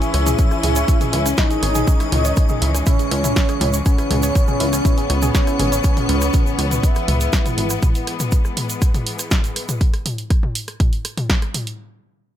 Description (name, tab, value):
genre	melodic techno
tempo	121 BPM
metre	4/4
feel	straight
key	C# minor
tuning	A4 = 444 Hz
part	fat analog lead	melody	0.0-7.7 s	C#4 to E4	-24 LUFS	right 1 dB	wide subtle chorus, sidechain pumping, digital delay
part	airy dreamy lead	second line	0.0-6.8 s	C#5 to E5	-27 LUFS	equal	chorus, sidechain pumping, digital delay
part	rich studio string section	sustained chords	0.0-9.8 s	E3 to C#4	-26 LUFS	left 5 dB	sidechain pumping
part	woody wave-folded pluck	arpeggios	0.0-5.8 s	C#4 to C#6	-28 LUFS	right 2 dB	chorus, sidechain pumping, digital delay
part	punchy analog drum machine	drums	0.0-11.8 s	hi-hat, rim click, snare drum, toms	-24 LUFS	equal	none
part	egg shaker	percussion	0.0-9.8 s	none	-29 LUFS	right 4 dB	none
part	plucky analog bass	bass	0.1-7.8 s	G#1 to C#2	-20 LUFS	equal	tube saturation, sidechain pumping
part	electronic kick drum	drums	0.4-11.4 s	none	-17 LUFS	equal	none
room	little or no reverb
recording	none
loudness	-16 LUFS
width	side -11 dB against mid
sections	0.0-11.8 A section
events	drop 0.0-11.8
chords	0.0 C#m